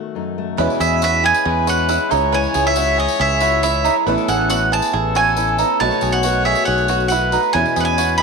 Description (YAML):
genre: indie folk with a building arrangement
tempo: 138 BPM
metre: 4/4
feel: straight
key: E major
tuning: A4 = 440 Hz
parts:
  - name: bowl-back mandolin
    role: melody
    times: 0.0-8.2 s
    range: D#5 to B5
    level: -18 LUFS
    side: right 4 dB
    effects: slapback echo
  - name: fingerpicked steel-string acoustic guitar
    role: accompaniment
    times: 0.0-0.6 s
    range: F#2 to F#4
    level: -26 LUFS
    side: left 6 dB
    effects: none
  - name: clear trumpet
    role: second line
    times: 0.6-8.2 s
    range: G#4 to C#5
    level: -24 LUFS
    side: left 11 dB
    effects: none
  - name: clear upright piano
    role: accompaniment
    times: 0.6-8.2 s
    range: A1 to E5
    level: -27 LUFS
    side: right 12 dB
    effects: none
  - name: picked twelve-string acoustic guitar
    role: accompaniment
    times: 0.6-8.2 s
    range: E2 to F#4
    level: -23 LUFS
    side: left 11 dB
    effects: none
  - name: bluegrass banjo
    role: arpeggios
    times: 0.6-8.2 s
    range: D#4 to B4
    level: -22 LUFS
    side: right 11 dB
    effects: none
  - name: fingered electric bass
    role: bass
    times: 0.6-8.2 s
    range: A1 to E2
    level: -22 LUFS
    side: equal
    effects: none
  - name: tambourine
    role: percussion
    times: 0.6-8.1 s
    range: none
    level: -31 LUFS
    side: left 14 dB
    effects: none
room: moderate echo chamber reverb, RT60 2.0 s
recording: 1960s-style stereo with parts hard left and right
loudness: -14 LUFS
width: side -4 dB against mid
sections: 0.6-8.2 A section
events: none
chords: 0.0 B7 (rootless); 0.6 E6; 2.1 C#m; 4.1 Aadd9; 5.8 B7; 7.5 E6